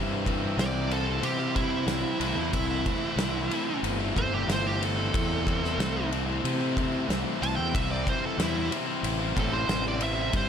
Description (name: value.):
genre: quiet-loud alternative rock.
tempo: 92 BPM.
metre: 4/4.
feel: straight.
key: A minor.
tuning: A4 = 439 Hz.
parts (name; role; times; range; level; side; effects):
biting overdriven guitar; riff; 0.0-10.5 s; C3 to E4; -32 LUFS; left 14 dB; none.
biting overdriven guitar; riff; 0.0-10.5 s; C3 to E4; -34 LUFS; right 12 dB; none.
fuzz fingered electric bass; bass; 0.0-10.5 s; G1 to C3; -31 LUFS; equal; overdrive.
loose indie drum kit; drums; 0.3-10.5 s; kick drum, ride cymbal, snare drum; -31 LUFS; equal; none.
dark smooth lead guitar; melody; 0.6-10.5 s; E4 to A5; -31 LUFS; right 4 dB; overdrive, slapback echo.
room: little or no reverb.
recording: none.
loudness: -25 LUFS.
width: side -8 dB against mid.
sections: 0.0-10.5 A section.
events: lead electric guitar solo 0.0-10.5.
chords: 0.0 C; 2.2 Am; 7.7 C.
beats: 0.59 1.24 1.89 | 2.54 3.19 3.84 4.49 | 5.13 5.78 6.43 7.08 | 7.73 8.38 9.03 9.67 | 10.32.